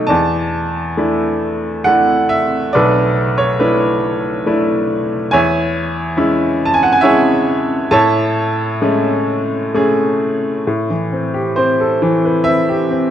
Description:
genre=classical, lyrical solo piano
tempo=64-72 BPM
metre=3/4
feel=rubato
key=unclear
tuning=A4 = 439 Hz
part: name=bright upright piano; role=solo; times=0.0-13.1 s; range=B1 to A5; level=-13 LUFS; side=equal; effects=none
room=moderate concert hall reverb, RT60 2.1 s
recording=dark, warm production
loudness=-13 LUFS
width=side -10 dB against mid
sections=0.1-10.7 A section; 10.7-13.1 B section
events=none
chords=0.1 E7sus4; 5.3 C#m/E; 7.9 Amaj7; 10.7 Am9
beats=| 0.09 0.98 1.87 | 2.75 3.60 4.46 | 5.32 6.17 7.02 | 7.91 8.82 9.74 | 10.66 11.56 12.46

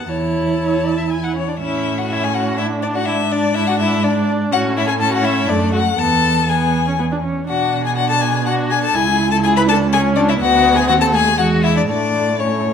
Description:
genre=quick classical-period movement for string quartet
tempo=122 BPM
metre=3/4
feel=straight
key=A major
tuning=A4 = 440 Hz
part: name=rich violin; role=melody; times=0.0-12.7 s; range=C#5 to B5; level=-19 LUFS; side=left 8 dB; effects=none
part: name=warm violin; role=second line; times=0.0-12.7 s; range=C#4 to G#5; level=-22 LUFS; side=left 4 dB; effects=none
part: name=dark cello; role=bass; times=0.0-12.7 s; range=C#2 to B2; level=-20 LUFS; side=right 4 dB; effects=none
part: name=warm viola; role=accompaniment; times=0.1-12.7 s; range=G#3 to E4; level=-21 LUFS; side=right 2 dB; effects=none
room=moderate recital hall reverb, RT60 1.4 s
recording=none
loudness=-14 LUFS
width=side -7 dB against mid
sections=0.0-1.6 A section; 1.6-12.7 B section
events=none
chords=0.1 A/E; 1.6 A; 2.6 D5/A; 3.1 E7/G#; 4.5 A; 5.5 D/F#; 6.0 E; 7.5 Bm; 9.0 C#m; 10.4 Bm/D; 10.9 G#(b9)/D#; 11.4 E; 11.9 A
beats=| 0.09 0.60 1.10 | 1.60 2.10 2.58 | 3.06 3.55 4.03 | 4.52 5.00 5.49 | 5.99 6.49 6.99 | 7.49 7.98 8.47 | 8.96 9.44 9.92 | 10.40 10.89 11.38 | 11.88 12.39

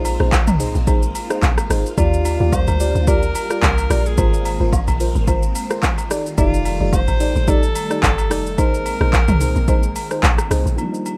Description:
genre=amapiano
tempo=109 BPM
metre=4/4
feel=swing 55% on 16ths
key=unclear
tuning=A4 = 440 Hz
part: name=bright alto saxophone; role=melody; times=0.0-11.2 s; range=F3 to C5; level=-29 LUFS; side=equal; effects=low-pass filter, digital delay
part: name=phased string machine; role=sustained chords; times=0.0-11.2 s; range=Eb3 to F5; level=-33 LUFS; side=equal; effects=ensemble chorus, phaser, sidechain pumping, low-pass filter
part: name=deep mellow chord stab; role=stabs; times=0.0-10.7 s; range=Eb4 to D5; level=-26 LUFS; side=equal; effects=chorus, low-pass filter, digital delay
part: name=deep log drum bass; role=bass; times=0.0-10.8 s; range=F1 to Eb2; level=-22 LUFS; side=equal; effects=none
part: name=agogo bells and woodblock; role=percussion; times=0.0-11.2 s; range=none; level=-30 LUFS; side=equal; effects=none
part: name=deep house drum kit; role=drums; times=0.1-11.2 s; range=handclaps, hi-hat, kick drum, rim click, shaker, toms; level=-21 LUFS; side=equal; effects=overdrive
part: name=dark baby grand piano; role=accompaniment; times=10.8-11.2 s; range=Eb3 to F4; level=-26 LUFS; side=equal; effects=low-pass filter
room=little or no reverb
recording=rough home demo mix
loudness=-18 LUFS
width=mono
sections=0.0-10.8 A section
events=drop 0.0-10.8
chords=0.0 Bb9sus4; 2.0 Ebmaj9; 4.2 Ab69; 6.1 F13; 8.6 Bb9sus4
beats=0.33 0.88 1.43 | 1.98 2.53 3.08 3.63 | 4.18 4.73 5.28 5.83 | 6.38 6.93 7.48 8.03 | 8.58 9.13 9.68 10.23 | 10.78

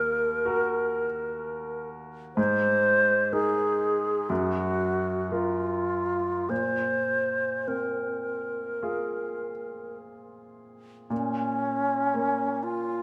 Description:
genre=classical, impressionist duo for alto flute and grand piano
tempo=48-63 BPM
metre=4/4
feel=rubato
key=Bb minor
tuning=A4 = 440 Hz
part: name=bright alto flute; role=melody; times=0.0-13.0 s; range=Db4 to C5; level=-28 LUFS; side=equal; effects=none
part: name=clear baby grand piano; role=accompaniment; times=0.0-13.0 s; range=Eb2 to Bb4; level=-34 LUFS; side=equal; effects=none
room=moderate concert hall reverb, RT60 2.0 s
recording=none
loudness=-27 LUFS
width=mono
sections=0.0-11.1 A section; 11.1-13.0 A section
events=none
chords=0.0 Ebm; 2.4 Abadd9; 4.3 Gbmaj7; 6.5 Bbsus2; 11.1 Bbm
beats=0.46 1.42 | 2.38 3.33 4.30 5.32 | 6.50 7.69 8.83 9.98 | 11.11 12.14

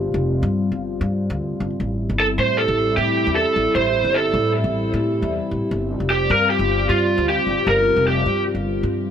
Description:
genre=progressive instrumental, progressive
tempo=153 BPM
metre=5/4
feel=straight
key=A minor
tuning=A4 = 439 Hz
part: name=dark analog pad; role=accompaniment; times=0.0-9.1 s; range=G3 to F4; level=-23 LUFS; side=left 2 dB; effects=chorus, phaser
part: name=upright bass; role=bass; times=0.0-9.1 s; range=F1 to A2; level=-23 LUFS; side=equal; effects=none
part: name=lead guitar through a small cranked amp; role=melody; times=2.2-8.4 s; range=F4 to C5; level=-19 LUFS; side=right 2 dB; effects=overdrive, digital delay
room=light reverb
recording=none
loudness=-17 LUFS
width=side -8 dB against mid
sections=0.0-1.8 A section; 1.8-9.1 B section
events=none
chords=0.0 G5; 1.8 Am7; 5.7 G7(no3)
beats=0.24 0.63 1.02 1.41 | 1.80 2.19 2.58 2.97 3.37 | 3.76 4.15 4.54 4.93 5.32 | 5.71 6.10 6.49 6.89 7.28 | 7.67 8.06 8.45 8.84

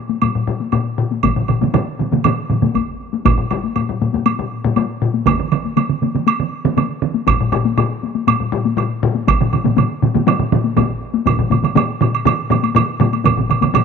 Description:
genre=japanese traditional, taiko drum ensemble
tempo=120 BPM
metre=4/4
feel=straight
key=none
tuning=none
part: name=taiko ensemble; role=percussion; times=0.1-13.8 s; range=none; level=-20 LUFS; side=left 10 dB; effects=none
part: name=taiko ensemble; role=percussion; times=0.2-13.8 s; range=none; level=-19 LUFS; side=left 5 dB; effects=none
part: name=woodblock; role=percussion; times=0.2-13.8 s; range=none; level=-21 LUFS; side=right 12 dB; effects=none
part: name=taiko ensemble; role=percussion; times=1.2-13.8 s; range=none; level=-18 LUFS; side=right 10 dB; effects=none
part: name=taiko ensemble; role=percussion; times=1.2-13.4 s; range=none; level=-21 LUFS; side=right 3 dB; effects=none
room=light reverb, small room reverb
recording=1960s-style stereo with parts hard left and right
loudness=-15 LUFS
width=side -6 dB against mid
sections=0.0-11.3 A section; 11.3-13.8 B section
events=none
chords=none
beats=0.21 0.72 | 1.23 1.74 2.24 2.75 | 3.25 3.76 4.26 4.77 | 5.27 5.77 6.28 6.78 | 7.28 7.78 8.28 8.78 | 9.28 9.78 10.27 10.77 | 11.27 11.76 12.26 12.76 | 13.25 13.74

